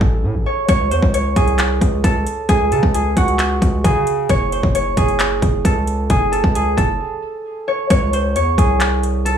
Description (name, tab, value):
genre	hip hop, trap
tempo	133 BPM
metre	4/4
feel	half-time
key	unclear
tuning	A4 = 440 Hz
part	concert harp	melody	0.0-9.4 s	F#4 to C#5	-18 LUFS	right 1 dB	none
part	hard-hitting 808-style bass	bass	0.0-9.4 s	F#1 to C#3	-19 LUFS	equal	none
part	trap drum kit	drums	0.0-9.4 s	handclaps, hi-hat, kick drum	-18 LUFS	equal	overdrive
room	light reverb, digital ambience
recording	dry, gritty hardware recording, studio reverb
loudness	-14 LUFS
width	side -8 dB against mid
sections	0.0-7.9 A section; 7.9-9.4 B section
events	break 0.0-0.7, 7.0-7.9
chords	0.0 A5; 0.7 C#5; 4.3 F#m; 7.9 C#m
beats	0.23 | 0.69 1.14 1.59 2.04 | 2.49 2.94 3.39 3.84 | 4.29 4.75 5.20 5.65 | 6.10 6.55 7.00 7.45 | 7.90 8.36 8.81 9.26